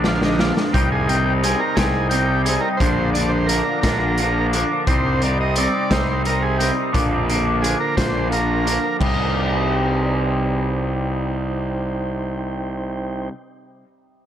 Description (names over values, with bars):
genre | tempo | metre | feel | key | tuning
psychedelic rock | 58 BPM (dotted quarters) | 6/8 | straight | C minor | A4 = 440 Hz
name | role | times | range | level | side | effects
twangy electric guitar | riff | 0.0-13.3 s | C3 to Eb4 | -23 LUFS | equal | phaser, double-tracked left and right, tape echo
fuzz picked electric bass | bass | 0.0-13.3 s | Bb1 to C2 | -22 LUFS | equal | overdrive
raw garage drum kit | drums | 0.0-9.2 s | crash cymbal, hi-hat, kick drum, snare drum | -24 LUFS | equal | none
overdriven combo organ | melody | 0.1-9.0 s | Eb4 to Eb5 | -25 LUFS | right 2 dB | tape echo
mellow tonewheel organ | sustained chords | 0.8-13.3 s | Eb4 to Eb6 | -30 LUFS | right 4 dB | slow rotary speaker
room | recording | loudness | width
light reverb, small room ambience | echo-heavy mix | -17 LUFS | side -10 dB against mid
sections
0.0-9.0 A section; 9.0-13.1 B section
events
drum fill 0.0-0.7; transistor combo organ solo 0.0-9.0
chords
0.0 Bb; 0.7 Cm; 2.8 Bb; 4.9 Cm; 6.9 Bb; 9.0 Cm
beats
| 0.73 1.76 | 2.79 3.83 | 4.86 5.89 | 6.93 7.96 | 9.00 10.04 | 11.07 12.11